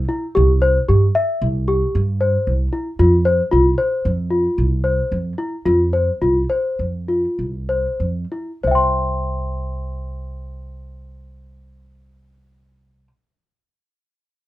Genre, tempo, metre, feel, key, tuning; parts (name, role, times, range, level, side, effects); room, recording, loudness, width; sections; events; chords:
contemporary instrumental, chamber music in an uneven meter; 92-114 BPM; 5/4; straight; C major; A4 = 440 Hz
upright bass; bass; 0.0-13.1 s; C2 to G2; -20 LUFS; right 1 dB
worn celesta; arpeggios; 0.1-13.2 s; E4 to C6; -18 LUFS; left 2 dB
light reverb; dark, warm production; -16 LUFS; side -16 dB against mid
0.0-8.6 A section; 8.6-11.9 B section
slowing down 4.0-8.6
0.0 C; 3.0 F5; 8.6 C